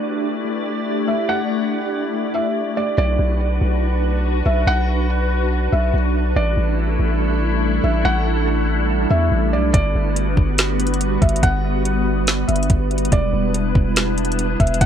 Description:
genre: hip hop, atmospheric cloud-rap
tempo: 142 BPM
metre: 4/4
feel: half-time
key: B minor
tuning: A4 = 442 Hz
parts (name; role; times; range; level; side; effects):
- felt-muted upright piano; melody; 0.0-14.9 s; D5 to F#5; -25 LUFS; right 1 dB; low-pass filter, tape echo
- glassy FM pad; sustained chords; 0.0-14.9 s; G3 to D5; -22 LUFS; equal; ensemble chorus, built-in reverb, sidechain pumping, low-pass filter
- muted felt-like synth keys; arpeggios; 0.0-3.0 s; A3 to D4; -29 LUFS; left 2 dB; chorus, low-pass filter, tape echo
- long sustained 808-style bass; bass; 3.0-14.9 s; E1 to E2; -19 LUFS; equal; none
- smooth R&B drum kit; drums; 9.7-14.9 s; hi-hat, kick drum, snare drum; -18 LUFS; equal; none
room: moderate studio ambience, RT60 0.5 s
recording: none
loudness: -17 LUFS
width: side -9 dB against mid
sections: 0.0-3.0 A section; 3.0-14.9 B section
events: none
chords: 0.0 A7sus4; 3.0 Bm; 6.4 A7sus4; 9.7 Gmaj7; 13.1 Em7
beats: 0.02 0.44 0.87 | 1.29 1.71 2.13 2.56 | 2.98 3.40 3.82 4.25 | 4.67 5.09 5.51 5.94 | 6.36 6.78 7.21 7.63 | 8.05 8.47 8.89 9.32 | 9.74 10.16 10.59 11.01 | 11.43 11.85 12.28 12.70 | 13.12 13.54 13.96 14.39 | 14.81

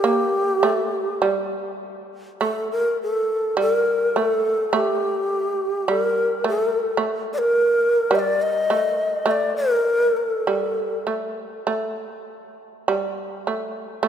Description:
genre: japanese traditional, Japanese chamber music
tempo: 48-54 BPM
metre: 2/4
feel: rubato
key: unclear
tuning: A4 = 440 Hz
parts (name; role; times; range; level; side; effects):
- breathy bright long shakuhachi; melody; 0.0-11.1 s; G4 to Eb5; -20 LUFS; left 1 dB; none
- shamisen; second line; 0.0-14.1 s; G3 to Bb3; -24 LUFS; right 3 dB; none
room: moderate church reverb, RT60 3.6 s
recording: minimal, uncompressed stereo recording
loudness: -19 LUFS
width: side -8 dB against mid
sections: 0.0-2.4 A section; 2.4-14.1 B section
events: none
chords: none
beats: | 0.02 1.21 | 2.40 3.57 | 4.72 5.86 | 6.99 8.11 | 9.23 10.43 | 11.65 12.84 | 14.00

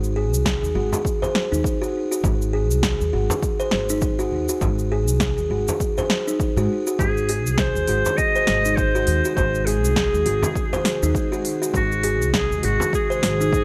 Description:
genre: organic downtempo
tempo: 101 BPM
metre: 4/4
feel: swing 58% on 16ths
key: unclear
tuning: A4 = 440 Hz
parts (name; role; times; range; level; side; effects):
- upright bass; bass; 0.0-13.6 s; G#1 to G#2; -26 LUFS; equal; sidechain pumping
- deep house drum kit; drums; 0.0-13.6 s; cabasa, hi-hat, snare drum; -28 LUFS; equal; none
- buzzing kalimba; arpeggios; 0.2-13.5 s; D#4 to B#4; -26 LUFS; equal; digital delay
- electronic kick drum; drums; 0.5-13.6 s; none; -28 LUFS; equal; none
- frame drum; percussion; 0.9-12.9 s; none; -31 LUFS; equal; none
- bright clarinet; melody; 7.0-13.6 s; F#4 to D#5; -25 LUFS; equal; digital delay
- ethereal airy pad; sustained chords; 7.8-13.6 s; B#2 to F#4; -33 LUFS; equal; ensemble chorus, built-in reverb, sidechain pumping
room: light reverb, small room ambience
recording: none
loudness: -21 LUFS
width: mono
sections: 0.0-13.6 A section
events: none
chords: 0.0 G#7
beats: 0.46 1.05 1.65 | 2.24 2.83 3.43 4.02 | 4.62 5.21 5.80 6.40 | 6.99 7.59 8.18 8.78 | 9.37 9.96 10.56 11.15 | 11.75 12.34 12.93 13.53

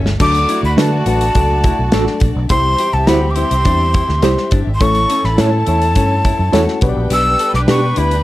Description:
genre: uptempo 1960s-style soul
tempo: 104 BPM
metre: 4/4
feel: straight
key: D major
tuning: A4 = 440 Hz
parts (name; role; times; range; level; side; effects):
- rich studio string section; second line; 0.0-8.2 s; A3 to A5; -27 LUFS; equal; none
- vintage hollow-body jazz guitar; riff; 0.0-8.1 s; A3 to A4; -25 LUFS; left 6 dB; none
- vintage muted fingered electric bass; bass; 0.0-8.2 s; G1 to D3; -17 LUFS; equal; none
- natural country drum kit; drums; 0.1-8.2 s; crash cymbal, hi-hat, kick drum, snare drum; -18 LUFS; equal; none
- breathy mellow jazz flute; melody; 0.2-8.2 s; A5 to E6; -17 LUFS; left 1 dB; none
- warm horn section; second line; 0.2-8.2 s; E3 to B4; -25 LUFS; right 3 dB; none
- reed electric piano; accompaniment; 0.2-8.2 s; F#3 to D5; -21 LUFS; left 4 dB; none
- mellow electric guitar; stabs; 0.8-7.8 s; D4 to C#5; -18 LUFS; right 6 dB; tremolo
room: light reverb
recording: none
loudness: -12 LUFS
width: side -16 dB against mid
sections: 0.2-8.2 A section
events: drum fill 0.0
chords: 0.2 D; 2.5 C; 4.8 A; 6.8 G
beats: | 0.20 0.78 1.35 1.93 | 2.50 3.08 3.65 4.23 | 4.80 5.38 5.96 6.53 | 7.11 7.68

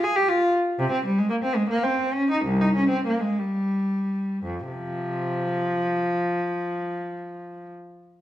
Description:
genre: classical, baroque-style suite movement for unaccompanied cello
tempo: 52-82 BPM (dotted quarters)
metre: 6/8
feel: rubato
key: F minor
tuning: A4 = 440 Hz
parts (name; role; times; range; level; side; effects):
- rich cello; solo; 0.0-7.7 s; C2 to Ab4; -22 LUFS; equal; none
room: wet stone room reverb, RT60 1.2 s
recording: heard from further back in the room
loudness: -22 LUFS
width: side -13 dB against mid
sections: 0.0-4.4 A section; 4.4-8.2 B section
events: slowing down 0.0-4.4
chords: none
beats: 0.02 | 0.77 1.54 | 2.41 3.34 | 4.42 5.49 | 6.54 7.60

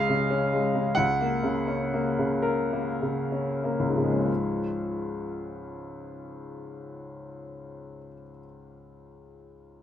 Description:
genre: classical, romantic character piece for solo piano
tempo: 30-48 BPM (dotted quarters)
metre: 6/8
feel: rubato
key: Db major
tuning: A4 = 439 Hz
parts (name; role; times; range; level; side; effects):
- clear upright piano; solo; 0.0-9.8 s; Db2 to Gb5; -26 LUFS; left 1 dB; none
room: moderate recital hall reverb, RT60 1.4 s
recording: close, detailed microphones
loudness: -24 LUFS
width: side -10 dB against mid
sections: 0.0-4.3 A section; 4.3-7.7 B section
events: slowing down 0.0-4.3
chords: 0.0 Db; 1.0 Gb/Db; 4.3 Db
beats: | 0.98 2.46 | 4.28 6.02

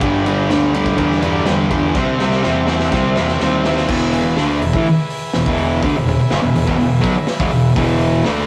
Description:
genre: garage rock duo or trio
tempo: 124 BPM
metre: 4/4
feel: straight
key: unclear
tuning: A4 = 439 Hz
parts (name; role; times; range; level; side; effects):
- overdriven combo organ; sustained chords; 0.0-8.5 s; G4 to E5; -29 LUFS; equal; none
- fuzz guitar; riff; 0.0-8.5 s; E2 to D4; -18 LUFS; equal; distortion
- fuzz fingered electric bass; bass; 0.0-8.5 s; E1 to E2; -24 LUFS; equal; overdrive
- raw garage drum kit; drums; 0.0-8.4 s; crash cymbal, hi-hat, kick drum, ride cymbal, snare drum; -25 LUFS; equal; none
room: wet stone room reverb, RT60 1.4 s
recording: rough rehearsal-room recording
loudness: -16 LUFS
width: mono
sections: 0.0-3.9 A section; 3.9-8.5 B section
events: drum fill 2.0-3.9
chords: 0.0 G; 2.0 C; 3.9 E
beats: | 0.02 0.50 0.99 1.47 | 1.96 2.44 2.92 3.41 | 3.89 4.38 4.86 5.35 | 5.83 6.32 6.80 7.29 | 7.78 8.26

